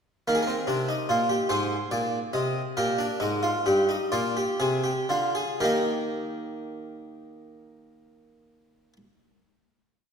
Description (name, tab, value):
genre	classical, baroque-style 3-part fugue for harpsichord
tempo	38-49 BPM (dotted quarters)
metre	6/8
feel	straight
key	Eb major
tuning	A4 = 440 Hz
part	harpsichord	solo	0.3-9.0 s	G2 to Eb5	-24 LUFS	equal	none
room	wet concert hall reverb, RT60 1.7 s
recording	none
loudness	-24 LUFS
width	side -6 dB against mid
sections	0.3-5.6 exposition; 5.6-8.7 final chord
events	slowing down 0.3-7.2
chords	0.3 Eb; 1.5 Ab; 2.8 Eb; 4.1 Bb7; 5.6 Eb